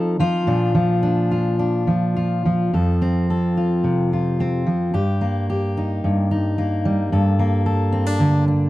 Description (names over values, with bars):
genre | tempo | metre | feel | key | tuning
folk, solo fingerstyle acoustic guitar | 110 BPM | 4/4 | rubato | F mixolydian | A4 = 440 Hz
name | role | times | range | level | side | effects
fingerpicked steel-string acoustic guitar | solo | 0.0-8.7 s | F2 to A4 | -17 LUFS | equal | none
room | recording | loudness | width
small room ambience | dry, close 1970s-style studio recording | -17 LUFS | side -16 dB against mid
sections
0.0-2.7 A section; 2.7-8.7 B section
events
none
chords
0.5 Bb; 2.7 F; 4.9 Eb/G; 7.1 Gmadd9